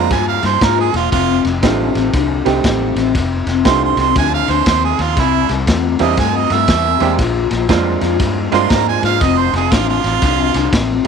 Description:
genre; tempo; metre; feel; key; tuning
electric blues shuffle; 119 BPM; 4/4; swing 64% on 8ths; F mixolydian; A4 = 440 Hz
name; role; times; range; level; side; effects
clear harmonica; second line; 0.0-10.9 s; E4 to C6; -17 LUFS; right 14 dB; overdrive
clear upright piano; accompaniment; 0.0-11.1 s; G3 to G4; -19 LUFS; right 12 dB; none
electric guitar through a small old amp; riff; 0.0-11.0 s; F2 to A3; -18 LUFS; left 12 dB; ensemble chorus
vintage muted fingered electric bass; bass; 0.0-11.1 s; E1 to Ab2; -20 LUFS; equal; none
crunchy breakbeat drum kit; drums; 0.1-11.1 s; kick drum, ride cymbal, snare drum; -19 LUFS; equal; none
room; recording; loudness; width
light reverb, small room ambience; 1960s-style stereo with parts hard left and right; -12 LUFS; side -6 dB against mid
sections
0.0-11.1 A section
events
harmonica solo 0.0-11.1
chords
0.0 Bb7(no3); 1.1 F7; 5.2 C7; 7.2 Bb7; 9.2 F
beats
0.11 0.61 | 1.12 1.63 2.13 2.64 | 3.15 3.65 4.16 4.66 | 5.17 5.67 6.18 6.69 | 7.19 7.70 8.20 8.71 | 9.21 9.72 10.22 10.73

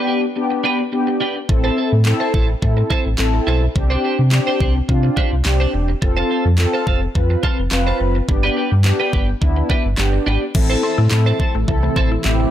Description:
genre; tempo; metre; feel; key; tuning
dance-pop; 106 BPM; 4/4; straight; A minor; A4 = 439 Hz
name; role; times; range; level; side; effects
mellow synth brass; accompaniment; 0.0-12.5 s; B3 to B4; -20 LUFS; left 2 dB; chorus, sidechain pumping
twelve-string electric guitar; riff; 0.0-12.4 s; D4 to C5; -24 LUFS; right 4 dB; analog chorus
sub bass with octave; bass; 1.5-12.5 s; E1 to C3; -17 LUFS; equal; sidechain pumping
pop drum kit; drums; 1.5-12.4 s; crash cymbal, handclaps, kick drum, snare drum; -20 LUFS; equal; none
granular cloud pad; sustained chords; 11.4-12.5 s; C3 to A4; -26 LUFS; right 1 dB; built-in reverb, sidechain pumping
mallet-like synth pluck; arpeggios; 10.6-12.4 s; E3 to E5; -28 LUFS; left 5 dB; chorus, sidechain pumping, ping-pong delay
room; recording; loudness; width
light reverb; none; -15 LUFS; side -11 dB against mid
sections
0.0-10.6 A section; 10.6-12.5 B section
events
none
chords
0.0 G; 1.5 Am; 3.8 Csus2; 6.0 F; 8.3 G; 10.6 Am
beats
0.36 0.93 | 1.49 2.06 2.63 3.19 | 3.76 4.32 4.89 5.46 | 6.02 6.59 7.15 7.72 | 8.29 8.85 9.42 9.98 | 10.55 11.12 11.68 12.25

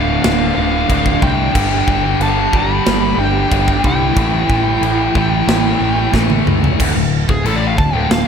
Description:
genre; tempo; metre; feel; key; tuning
heavy metal; 92 BPM; 4/4; straight; unclear; A4 = 440 Hz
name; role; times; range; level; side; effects
smooth overdriven lead guitar; melody; 0.0-8.3 s; G#4 to B5; -20 LUFS; equal; slapback echo
high-gain lead guitar; second line; 0.0-6.1 s; D4 to G4; -23 LUFS; right 2 dB; distortion, slapback echo, tape echo
distorted electric guitar; riff; 0.0-8.3 s; D2 to A3; -23 LUFS; right 11 dB; distortion
scooped high-gain guitar; riff; 0.0-8.3 s; D2 to A3; -20 LUFS; left 11 dB; distortion, slapback echo
scooped high-gain guitar; riff; 0.0-8.3 s; D2 to A3; -24 LUFS; left 1 dB; none
growling picked electric bass; bass; 0.0-8.3 s; D1 to C#2; -19 LUFS; equal; overdrive
tight metal drum kit; drums; 0.2-8.3 s; china cymbal, crash cymbal, kick drum, snare drum, toms; -18 LUFS; equal; none
room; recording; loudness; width
moderate lush hall reverb, RT60 3.2 s; big arena sound; -12 LUFS; side -7 dB against mid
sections
0.0-6.8 A section; 6.8-8.3 B section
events
drum fill 6.1-6.8; lead electric guitar solo 6.8-8.3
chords
0.0 Dm; 1.6 G; 4.2 A7(no3); 6.8 D5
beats
0.24 0.90 | 1.55 2.21 2.86 3.52 | 4.17 4.83 5.49 6.14 | 6.80 7.45 8.11

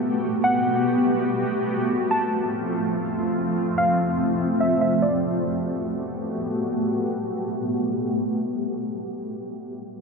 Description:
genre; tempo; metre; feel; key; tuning
hip hop; free time; none; none; G major; A4 = 440 Hz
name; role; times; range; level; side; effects
granular cloud pad; sustained chords; 0.0-8.9 s; F3 to G4; -22 LUFS; equal; built-in reverb
warbly dusty pluck; melody; 0.4-6.2 s; D5 to A5; -26 LUFS; right 1 dB; chorus, low-pass filter, dub echo
room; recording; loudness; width
moderate echo chamber reverb, RT60 1.9 s, digital ambience; echo-heavy mix, low-pass filter; -21 LUFS; side -4 dB against mid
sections
0.0-5.0 A section; 5.0-8.4 B section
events
filter sweep 0.0-5.0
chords
0.0 Gmaj9; 1.7 F; 5.0 Gmaj9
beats
free time

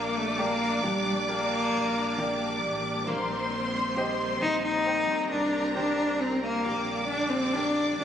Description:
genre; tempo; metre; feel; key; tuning
pop ballad; 67 BPM; 4/4; straight; unclear; A4 = 440 Hz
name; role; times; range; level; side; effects
rich cello; melody; 0.0-8.0 s; G3 to Eb4; -27 LUFS; left 1 dB; digital delay
warm studio violin section; second line; 0.0-8.0 s; Bb4 to D6; -31 LUFS; left 1 dB; digital delay
bright grand piano; accompaniment; 0.0-8.0 s; Bb3 to G5; -37 LUFS; equal; none
clear studio string section; sustained chords; 0.0-8.0 s; D3 to D4; -38 LUFS; equal; none
fingerpicked steel-string acoustic guitar; arpeggios; 0.0-8.0 s; Bb3 to C5; -36 LUFS; right 3 dB; none
warm sub bass; bass; 0.0-8.0 s; A1 to C2; -41 LUFS; equal; none
room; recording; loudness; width
moderate lush hall reverb, RT60 2.6 s; recorded on a phone in the room, club reverb, nothing above 10.7 kHz; -25 LUFS; side -9 dB against mid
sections
0.0-8.0 A section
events
none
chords
0.0 Gm/Bb; 3.1 Eb6/Bb; 6.7 Gm/Bb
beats
0.39 1.28 2.18 | 3.07 3.97 4.86 5.76 | 6.66 7.55

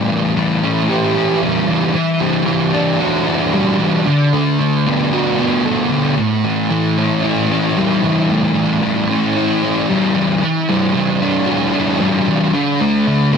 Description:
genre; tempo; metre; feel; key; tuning
rock; 113 BPM; 4/4; straight; A mixolydian; A4 = 440 Hz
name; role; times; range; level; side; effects
fuzz guitar; solo; 0.0-13.4 s; A2 to G4; -13 LUFS; equal; distortion, wide subtle chorus, analog delay
room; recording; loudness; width
moderate studio ambience, RT60 0.5 s; dense, heavily limited modern master; -13 LUFS; side -6 dB against mid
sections
0.0-13.4 A section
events
none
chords
0.0 A7; 1.9 Em9; 4.1 D6; 6.2 A7; 10.4 Em9; 12.5 D5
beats
0.36 0.89 1.41 | 1.94 2.47 3.00 3.53 | 4.06 4.59 5.12 5.65 | 6.18 6.71 7.24 7.77 | 8.30 8.82 9.36 9.88 | 10.41 10.94 11.47 12.00 | 12.53 13.05

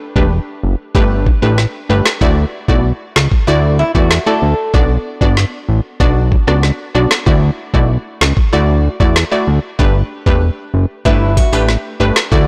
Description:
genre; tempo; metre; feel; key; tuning
dancehall; 95 BPM; 4/4; straight; unclear; A4 = 440 Hz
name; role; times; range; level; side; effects
wavetable chord stab; accompaniment; 0.2-12.5 s; A3 to D5; -20 LUFS; equal; none
fat analog bass; bass; 0.2-12.5 s; E1 to E2; -16 LUFS; equal; none
island pop drum kit; drums; 0.2-12.5 s; kick drum, rim click, snare drum; -16 LUFS; equal; none
flamenco guitar; arpeggios; 3.8-4.7, 11.1-12.3 s; E4 to A4; -21 LUFS; equal; none
room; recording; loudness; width
light reverb; blown-out, overdriven recording, overdrive; -14 LUFS; mono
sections
0.0-12.5 A section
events
none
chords
0.0 Gadd9; 2.2 Dadd9; 4.7 Bm; 7.3 Dadd9; 9.8 Gadd9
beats
0.32 0.95 1.58 | 2.21 2.84 3.48 4.11 | 4.74 5.37 6.00 6.63 | 7.26 7.90 8.53 9.16 | 9.79 10.42 11.05 11.69 | 12.32

